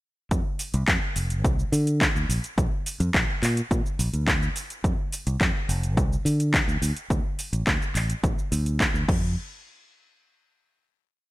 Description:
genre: nu-disco, nu disco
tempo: 106 BPM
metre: 4/4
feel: straight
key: F major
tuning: A4 = 443 Hz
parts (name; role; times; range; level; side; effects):
- fingered electric bass; bass; 0.3-9.3 s; F1 to D3; -25 LUFS; equal; none
- electronic kick drum; drums; 0.3-9.2 s; none; -25 LUFS; equal; overdrive
- house drum kit; drums; 0.3-9.2 s; cabasa, crash cymbal, handclaps, hi-hat; -28 LUFS; equal; overdrive
room: little or no reverb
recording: none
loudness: -22 LUFS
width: side -18 dB against mid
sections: 0.3-9.4 drop; 9.4-11.3 final hit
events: drop 0.3-9.4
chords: none

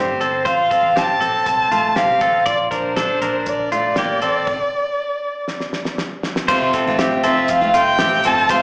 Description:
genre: jangly indie pop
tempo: 120 BPM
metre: 4/4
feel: straight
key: F major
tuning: A4 = 437 Hz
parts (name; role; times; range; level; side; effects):
- dark violin; melody; 0.0-8.6 s; C5 to A5; -20 LUFS; equal; none
- clean electric guitar; arpeggios; 0.0-8.6 s; A3 to D5; -22 LUFS; equal; slapback echo
- vintage muted fingered electric bass; bass; 0.0-8.6 s; F1 to F2; -37 LUFS; equal; none
- cloth-damped thuddy drum kit; drums; 0.2-8.6 s; crash cymbal, hi-hat, kick drum, snare drum; -28 LUFS; equal; none
- picked steel-string acoustic guitar; accompaniment; 6.5-8.6 s; F2 to F4; -23 LUFS; equal; slapback echo
room: moderate lush hall reverb, RT60 1.6 s, studio reverb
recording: live gig heard through the venue's PA, club reverb, small speaker sound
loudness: -18 LUFS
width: mono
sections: 0.0-6.5 A section; 6.5-8.6 B section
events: stop 4.5-6.5; drum fill 5.5-6.5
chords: 0.0 F; 2.5 Bb; 6.5 F

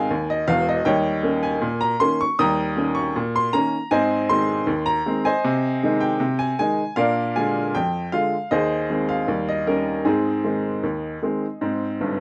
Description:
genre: ragtime piano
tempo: 78 BPM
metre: 2/4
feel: straight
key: Ab major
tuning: A4 = 440 Hz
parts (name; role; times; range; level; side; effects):
- bright upright piano; solo; 0.0-12.2 s; Fb1 to Eb6; -22 LUFS; equal; none
room: light reverb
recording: dry, close 1970s-style studio recording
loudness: -22 LUFS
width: mono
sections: 0.0-12.2 A section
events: upright piano fill 12.0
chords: 0.0 Ab; 0.9 Eb7; 3.9 Ab; 5.4 Ab/C; 7.0 Bb7; 8.5 Ab/Eb; 9.3 Eb7; 10.1 Ab

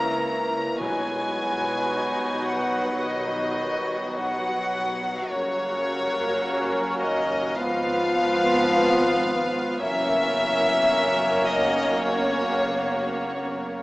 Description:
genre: classical, slow romantic movement for symphony orchestra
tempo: 54 BPM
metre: 4/4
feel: rubato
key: B major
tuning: A4 = 441 Hz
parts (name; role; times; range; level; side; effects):
- warm chamber violin section; melody; 0.0-13.1 s; C#5 to A#5; -28 LUFS; left 2 dB; none
- dark studio violin section; second line; 0.0-13.8 s; F4 to E5; -34 LUFS; left 1 dB; none
- mellow cor anglais; second line; 0.0-13.8 s; A#4 to B4; -32 LUFS; right 1 dB; none
- mellow hollow silver concert flute; second line; 0.0-13.1 s; C#5 to A#5; -29 LUFS; equal; none
- warm clarinet; second line; 0.0-13.8 s; Cb4 to E4; -34 LUFS; equal; none
- mellow bassoon; accompaniment; 0.0-13.8 s; E3 to F#3; -32 LUFS; equal; none
- rich studio viola section; accompaniment; 0.0-13.8 s; E3 to F#4; -30 LUFS; equal; none
- dark French horn section; sustained chords; 0.0-13.1 s; C#3 to A#3; -32 LUFS; left 1 dB; none
- mellow trombone section; sustained chords; 0.0-13.8 s; D#3 to B3; -33 LUFS; right 1 dB; none
- warm chamber cello section; bass; 0.0-13.8 s; F#2 to C#3; -38 LUFS; right 1 dB; none
- warm studio double bass section; bass; 0.0-13.8 s; F#1 to C#2; -40 LUFS; right 1 dB; none
- timpani; percussion; 0.8-2.5 s; B2; -46 LUFS; equal; none
room: wet concert hall reverb, RT60 2.2 s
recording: small speaker sound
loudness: -21 LUFS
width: side -20 dB against mid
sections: 0.0-13.8 A section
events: none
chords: 0.0 A#dim/C#; 0.8 B; 5.3 F#; 7.6 Fdim/Ab; 9.8 F#

